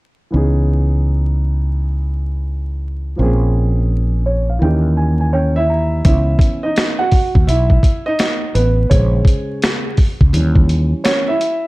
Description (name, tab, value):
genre	hip hop, jazz-hop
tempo	84 BPM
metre	4/4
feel	swing 65% on 16ths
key	C# minor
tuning	A4 = 439 Hz
part	dark concert grand piano	accompaniment	0.3-11.7 s	C#3 to A#5	-19 LUFS	right 1 dB	none
part	mellow fretless electric bass	bass	0.3-10.9 s	A1 to D#2	-15 LUFS	equal	none
part	boom bap sampler-style drum kit	drums	6.0-11.6 s	hi-hat, kick drum, snare drum	-14 LUFS	equal	none
room	little or no reverb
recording	dark, warm production, vinyl crackle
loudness	-13 LUFS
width	side -20 dB against mid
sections	0.3-6.0 A section; 6.0-11.7 B section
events	grand piano fill 3.9-6.0; grand piano solo 6.0-11.7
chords	0.3 C#m9; 3.2 A#m7; 4.6 D#7b9; 6.0 C#m9; 8.9 A#m7; 10.3 D#7b9